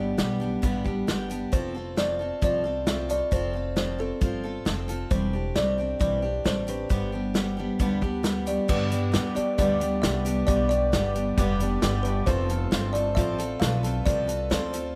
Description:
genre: honky-tonk and classic country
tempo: 134 BPM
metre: 4/4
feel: straight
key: G mixolydian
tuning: A4 = 440 Hz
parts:
  - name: kalimba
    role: melody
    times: 0.0-14.9 s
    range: A4 to F5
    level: -32 LUFS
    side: equal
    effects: none
  - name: picked steel-string acoustic guitar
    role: accompaniment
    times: 0.0-15.0 s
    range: G2 to A4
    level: -32 LUFS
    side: equal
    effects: none
  - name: upright bass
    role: bass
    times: 0.0-14.9 s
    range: E1 to G2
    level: -32 LUFS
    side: equal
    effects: none
  - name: natural country drum kit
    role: drums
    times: 0.2-14.8 s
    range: crash cymbal, hi-hat, kick drum, snare drum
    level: -30 LUFS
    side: equal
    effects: none
  - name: honky-tonk upright piano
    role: accompaniment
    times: 8.7-14.9 s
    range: F4 to D5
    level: -37 LUFS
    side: equal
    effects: none
room: moderate studio reverb, RT60 0.8 s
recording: none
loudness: -26 LUFS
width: mono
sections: 0.0-8.7 A section; 8.7-15.0 B section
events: none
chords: 0.0 G; 1.5 F; 5.1 Cadd9/E; 6.9 G; 12.3 F

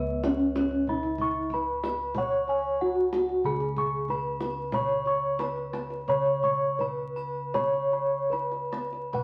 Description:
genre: Javanese gamelan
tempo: 72-93 BPM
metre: 4/4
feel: straight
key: C# slendro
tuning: A4 = 440 Hz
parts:
  - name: gamelan-type bronze metallophone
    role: melody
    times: 0.0-9.2 s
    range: B3-25c to C#5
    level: -30 LUFS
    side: equal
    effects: none
  - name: gamelan-type bossed gongs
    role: arpeggios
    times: 0.0-9.2 s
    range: C#5 to C#6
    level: -35 LUFS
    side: equal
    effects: none
  - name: gamelan-type bronze metallophone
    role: arpeggios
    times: 0.0-9.2 s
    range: B4-25c to C#6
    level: -39 LUFS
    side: equal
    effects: none
  - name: gamelan-type bossed gongs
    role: bass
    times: 0.0-9.2 s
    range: C#2 to C#5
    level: -38 LUFS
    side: equal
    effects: none
  - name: kendang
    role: percussion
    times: 0.2-9.2 s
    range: none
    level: -41 LUFS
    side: equal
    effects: none
room: moderate studio reverb, RT60 0.9 s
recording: vinyl crackle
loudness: -28 LUFS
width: mono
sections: 0.0-9.2 A section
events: none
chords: none

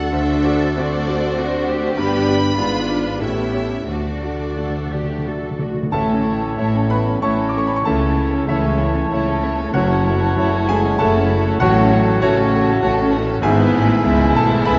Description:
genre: classical, romantic movement for piano and orchestra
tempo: 86-101 BPM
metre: 3/4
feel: rubato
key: D major, A major from 5.9 s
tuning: A4 = 440 Hz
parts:
  - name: clear concert grand piano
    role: melody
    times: 0.0-14.8 s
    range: F#1 to D6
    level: -22 LUFS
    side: equal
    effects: none
  - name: warm symphonic violin section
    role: melody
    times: 0.0-14.8 s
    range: F#4 to B5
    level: -34 LUFS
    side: equal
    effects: none
  - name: rich chamber violin section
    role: second line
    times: 0.0-14.8 s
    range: C#4 to C5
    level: -30 LUFS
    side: equal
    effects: none
  - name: warm studio viola section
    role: accompaniment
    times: 0.0-14.8 s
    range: G#3 to D4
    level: -27 LUFS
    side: equal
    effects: none
  - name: rich symphonic cello section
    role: bass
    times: 0.0-14.8 s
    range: F#2 to A4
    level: -28 LUFS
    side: equal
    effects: none
  - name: rich symphonic double bass section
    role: bass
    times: 0.0-14.8 s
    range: F#1 to D2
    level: -27 LUFS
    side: equal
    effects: none
  - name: timpani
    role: percussion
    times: 3.9-5.9, 11.6-12.5 s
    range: A2 to D3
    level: -30 LUFS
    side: equal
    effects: none
  - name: clear clarinet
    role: second line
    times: 5.9-14.8 s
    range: E4 to F#4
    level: -29 LUFS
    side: equal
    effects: none
  - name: clear oboe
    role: second line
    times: 5.9-14.8 s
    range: C#5 to E5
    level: -31 LUFS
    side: equal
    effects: none
  - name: mellow large flute ensemble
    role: second line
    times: 5.9-14.8 s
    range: G#5 to A5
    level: -30 LUFS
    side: equal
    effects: none
  - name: mellow French horn section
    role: sustained chords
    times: 5.9-14.8 s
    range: C#3 to C#4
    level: -27 LUFS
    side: equal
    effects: none
room: wet scoring stage reverb, RT60 2.0 s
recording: dark, warm production, nothing above 7.6 kHz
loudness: -18 LUFS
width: mono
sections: 0.0-5.9 A section; 5.9-14.8 B section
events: timpani fill 3.9-5.9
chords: 0.1 D7; 2.0 G; 2.6 G#dim7; 3.2 A9; 3.9 D; 5.9 A; 7.9 A/C#; 9.7 F#m7; 11.6 F#m/A; 13.4 E/G#

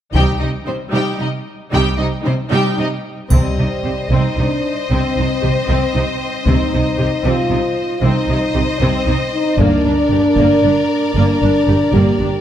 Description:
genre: cinematic, epic orchestral film score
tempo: 76 BPM (dotted quarters)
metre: 6/8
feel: straight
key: C minor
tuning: A4 = 439 Hz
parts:
  - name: warm symphonic violin section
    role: second line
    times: 0.1-12.4 s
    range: C4 to G5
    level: -24 LUFS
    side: left 1 dB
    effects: none
  - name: warm symphonic viola section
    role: accompaniment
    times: 0.1-12.3 s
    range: G3 to G4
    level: -23 LUFS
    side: right 1 dB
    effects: none
  - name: warm studio cello section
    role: bass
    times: 0.1-12.3 s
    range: G2 to C3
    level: -21 LUFS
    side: right 2 dB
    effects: none
  - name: warm symphonic double bass section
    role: bass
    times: 0.1-12.3 s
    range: G1 to C2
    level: -20 LUFS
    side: right 2 dB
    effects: none
  - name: taiko ensemble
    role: drums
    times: 0.1-10.6 s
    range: none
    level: -19 LUFS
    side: equal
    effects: none
  - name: warm symphonic violin section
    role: melody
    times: 3.3-12.4 s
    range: D5 to Eb5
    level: -26 LUFS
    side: left 3 dB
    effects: none
  - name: dark French horn section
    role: sustained chords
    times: 3.3-12.4 s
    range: G3 to G4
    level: -18 LUFS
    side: left 1 dB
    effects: none
  - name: triangle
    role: percussion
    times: 3.3-4.3 s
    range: none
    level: -35 LUFS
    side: equal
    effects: none
room: moderate scoring stage reverb, RT60 1.9 s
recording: none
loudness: -14 LUFS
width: side -10 dB against mid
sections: 0.1-3.3 A section; 3.3-12.4 B section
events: none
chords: 0.1 Cm; 9.6 Gm

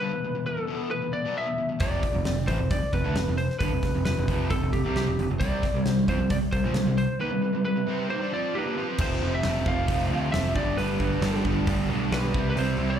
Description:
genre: classic rock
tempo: 134 BPM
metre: 4/4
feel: straight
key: unclear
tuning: A4 = 438 Hz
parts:
  - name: lightly driven lead guitar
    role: melody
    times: 0.0-13.0 s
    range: G4 to F5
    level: -30 LUFS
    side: left 1 dB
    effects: slapback echo
  - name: distorted electric guitar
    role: riff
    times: 0.0-13.0 s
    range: E2 to F4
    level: -31 LUFS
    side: left 9 dB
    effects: distortion, slapback echo
  - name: distorted electric guitar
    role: riff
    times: 1.8-13.0 s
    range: F2 to F4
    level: -30 LUFS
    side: right 11 dB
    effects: distortion, slapback echo
  - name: growling picked electric bass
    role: bass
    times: 1.8-13.0 s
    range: F1 to F2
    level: -28 LUFS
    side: equal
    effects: overdrive
  - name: gated 80s drum kit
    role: drums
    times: 1.8-12.7 s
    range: crash cymbal, hi-hat, kick drum, snare drum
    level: -30 LUFS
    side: equal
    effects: none
  - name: string machine, full ensemble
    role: sustained chords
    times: 9.0-13.0 s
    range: G3 to C5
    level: -37 LUFS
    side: equal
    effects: none
room: light reverb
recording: live gig heard through the venue's PA, club reverb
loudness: -23 LUFS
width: side -9 dB against mid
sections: 0.0-9.0 A section; 9.0-13.0 B section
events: break 7.2-9.0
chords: 0.0 E5; 1.8 F5; 5.4 C5; 9.0 F; 10.6 Gadd9; 12.3 C

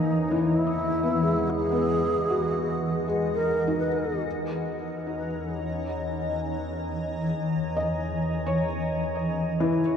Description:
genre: ambient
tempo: 65 BPM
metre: 3/4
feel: straight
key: unclear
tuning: A4 = 438 Hz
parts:
  - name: bright wooden-headed alto flute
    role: melody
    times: 0.0-4.2 s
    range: D#4 to B4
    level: -28 LUFS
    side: right 1 dB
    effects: ping-pong delay
  - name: granular cloud pad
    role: sustained chords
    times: 0.0-10.0 s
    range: E3 to A#5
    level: -28 LUFS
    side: equal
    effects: built-in reverb
  - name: felt-muted upright piano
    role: arpeggios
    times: 0.0-10.0 s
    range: E3 to D#6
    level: -29 LUFS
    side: left 2 dB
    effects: ping-pong delay
  - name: dark symphonic double bass section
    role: bass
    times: 0.0-10.0 s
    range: E2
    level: -37 LUFS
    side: equal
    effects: none
room: wet cathedral reverb, RT60 5.0 s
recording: worn, warbling old tape, cassette tape, warbly pitch drift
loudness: -24 LUFS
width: side -7 dB against mid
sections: 0.0-10.0 A section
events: fade-in on double bass section 0.0-10.0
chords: 0.0 F#13/E

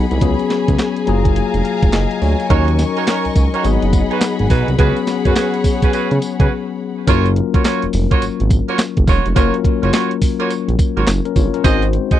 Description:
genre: R&B, new jack swing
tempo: 105 BPM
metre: 4/4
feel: swing 63% on 16ths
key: F# major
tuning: A4 = 440 Hz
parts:
  - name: tine electric piano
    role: accompaniment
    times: 0.0-12.2 s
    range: F#3 to A#5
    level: -20 LUFS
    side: left 10 dB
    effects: none
  - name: warm studio string section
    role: sustained chords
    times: 0.0-7.1 s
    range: G#4 to C#6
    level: -24 LUFS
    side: left 1 dB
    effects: none
  - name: smooth synth bass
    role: bass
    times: 0.0-12.0 s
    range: E1 to C#3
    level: -17 LUFS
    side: right 1 dB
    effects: none
  - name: clean 12-bit digital drum machine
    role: drums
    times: 0.1-12.2 s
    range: handclaps, hi-hat, kick drum, snare drum, tambourine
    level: -16 LUFS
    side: right 1 dB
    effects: none
  - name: warm horn section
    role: stabs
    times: 2.5-12.2 s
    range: C#4 to D#5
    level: -20 LUFS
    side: right 6 dB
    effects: tape echo
room: little or no reverb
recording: dry, close 1970s-style studio recording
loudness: -13 LUFS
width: side -12 dB against mid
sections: 0.0-7.1 A section; 7.1-12.2 B section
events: tine electric piano fill 0.8-2.5; break 6.5-7.1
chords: 0.2 C#7sus4; 1.1 F#maj9; 2.5 D#m7; 3.6 G#m7; 4.8 C#7sus4; 7.1 F#maj7; 11.6 G#7

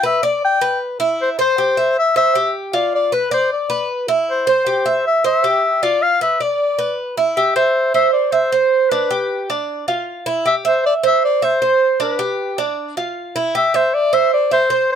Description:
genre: latin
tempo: 155 BPM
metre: 4/4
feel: straight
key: C major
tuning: A4 = 441 Hz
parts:
  - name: warm clarinet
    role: melody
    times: 0.0-15.0 s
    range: B4 to G5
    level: -16 LUFS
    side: left 3 dB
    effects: none
  - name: Cuban tres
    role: arpeggios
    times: 0.0-15.0 s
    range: D4 to E5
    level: -18 LUFS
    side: right 5 dB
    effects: none
room: light reverb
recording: close, detailed microphones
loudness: -14 LUFS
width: side -8 dB against mid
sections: 0.0-7.4 A section; 7.4-15.0 B section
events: none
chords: 0.0 G; 1.2 C; 2.7 Dm69; 4.3 C; 5.8 Dm69; 7.4 C; 8.9 G7; 10.5 C; 12.0 G7; 13.6 C

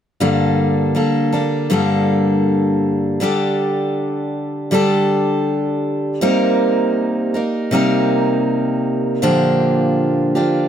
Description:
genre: pop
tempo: 80 BPM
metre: 4/4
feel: swing 60% on 16ths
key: G minor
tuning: A4 = 440 Hz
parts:
  - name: picked steel-string acoustic guitar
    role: accompaniment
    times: 0.2-10.7 s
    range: G2 to Bb4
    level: -15 LUFS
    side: equal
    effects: none
room: light reverb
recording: close, detailed microphones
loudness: -15 LUFS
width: side -9 dB against mid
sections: 0.2-10.7 A section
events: none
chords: 0.2 Gmadd9; 3.2 Dsus4; 6.2 Cm7; 9.2 Bb6

